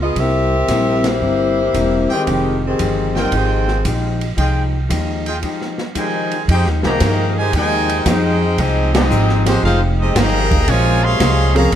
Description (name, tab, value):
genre	jazz, big band swing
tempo	114 BPM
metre	4/4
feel	swing 68% on 8ths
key	F minor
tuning	A4 = 440 Hz
part	mellow saxophone section	melody	0.0-3.9 s	Eb3 to E5	-18 LUFS	left 2 dB	none
part	upright bass	bass	0.0-11.8 s	E1 to G2	-18 LUFS	right 1 dB	none
part	vintage hollow-body jazz guitar	accompaniment	0.2-11.8 s	C3 to C5	-23 LUFS	left 4 dB	none
part	open jazz drum kit	drums	0.2-11.8 s	hi-hat, kick drum, ride cymbal, snare drum	-23 LUFS	right 1 dB	none
part	brilliant trumpet section	stabs	2.1-5.4 s	F4 to G5	-25 LUFS	right 2 dB	none
part	bright upright piano	accompaniment	2.3-3.8, 9.5-11.7 s	F3 to G5	-22 LUFS	right 2 dB	none
part	brilliant trumpet section	melody	6.0-11.7 s	Ab3 to C6	-20 LUFS	equal	none
part	bright trombone section	second line	6.0-11.8 s	C3 to Ab4	-22 LUFS	equal	none
part	bright trombone section	sustained chords	6.8-11.5 s	C3 to Ab4	-28 LUFS	left 1 dB	none
room	light reverb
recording	dark, warm production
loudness	-14 LUFS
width	side -10 dB against mid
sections	0.0-6.5 A section; 6.5-11.8 B section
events	band accent 1.0, 8.8; break 5.4-6.5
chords	0.2 C7; 2.3 Fm9; 10.7 Bbm9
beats	| 0.16 0.69 1.22 1.75 | 2.27 2.80 3.33 3.85 | 4.38 4.91 5.43 5.96 | 6.48 7.01 7.53 8.06 | 8.58 9.10 9.63 10.15 | 10.68 11.20 11.72